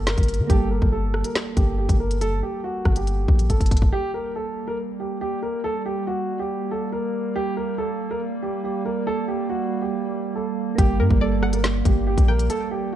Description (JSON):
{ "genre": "hip hop, drill", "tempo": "140 BPM", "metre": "4/4", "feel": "half-time", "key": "G harmonic minor", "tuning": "A4 = 440 Hz", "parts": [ { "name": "dark baby grand piano", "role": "melody", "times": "0.0-13.0 s", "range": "F#4 to Bb4", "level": "-27 LUFS", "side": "right 1 dB", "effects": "low-pass filter" }, { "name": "soft electric-piano-like synth keys", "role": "accompaniment", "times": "0.0-3.9, 10.8-13.0 s", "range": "G3 to A4", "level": "-30 LUFS", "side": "right 4 dB", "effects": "chorus, low-pass filter" }, { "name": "long sustained 808-style bass", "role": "bass", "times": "0.0-3.9, 10.8-12.5 s", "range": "F#1 to D3", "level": "-22 LUFS", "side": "equal", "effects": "none" }, { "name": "drill drum kit", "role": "drums", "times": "0.1-3.9, 10.8-12.6 s", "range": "hi-hat, kick drum, rim click, snare drum", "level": "-20 LUFS", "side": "equal", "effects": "none" }, { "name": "warbly tape-like pad", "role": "sustained chords", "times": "4.0-13.0 s", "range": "G3 to Bb3", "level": "-27 LUFS", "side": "right 4 dB", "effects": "chorus, built-in reverb" }, { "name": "string-like resonator pluck", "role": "second line", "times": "11.0-12.5 s", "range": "Bb4 to G5", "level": "-33 LUFS", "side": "left 4 dB", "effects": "chorus, tape echo" } ], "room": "light reverb", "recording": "dark, warm production", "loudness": "-20 LUFS", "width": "side -11 dB against mid", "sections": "0.0-3.9 A section; 3.9-13.0 B section", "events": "drum fill 3.5-3.9", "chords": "0.5 Gmadd9; 3.9 Gm" }